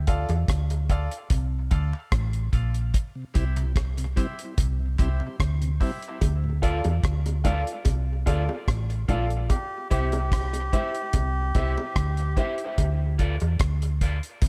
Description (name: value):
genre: dub reggae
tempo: 73 BPM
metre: 4/4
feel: straight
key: D minor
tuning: A4 = 437 Hz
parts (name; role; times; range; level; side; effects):
- hollow-body short-scale fingered electric bass; bass; 0.0-14.5 s; A1 to E2; -28 LUFS; equal; none
- bright concert grand piano; stabs; 0.1-12.6 s; E4 to F5; -36 LUFS; equal; high-pass filter, tape echo
- deep reggae drum kit; drums; 0.1-14.5 s; hi-hat, kick drum, rim click; -27 LUFS; equal; none
- bongos; percussion; 0.3-14.5 s; none; -40 LUFS; equal; high-pass filter on perc, tape echo
- mellow tonewheel organ; accompaniment; 3.2-6.5 s; D2 to E4; -38 LUFS; equal; slow rotary speaker, tape echo
- electric guitar at the edge of break-up; accompaniment; 6.6-14.2 s; F4 to E5; -39 LUFS; equal; high-pass filter, tape echo
- melodica; melody; 9.5-12.3 s; G4; -34 LUFS; equal; tape echo
room: small room ambience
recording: echo-heavy mix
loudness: -26 LUFS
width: mono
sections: 0.0-14.5 A section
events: break 0.0-9.5; filter sweep 9.5-14.5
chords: 0.0 Dm; 2.9 C; 6.2 Dm; 9.5 C; 12.8 Dm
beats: 0.49 1.31 2.13 | 2.95 3.77 4.58 5.40 | 6.22 7.04 7.86 8.68 | 9.50 10.32 11.14 11.96 | 12.78 13.60 14.43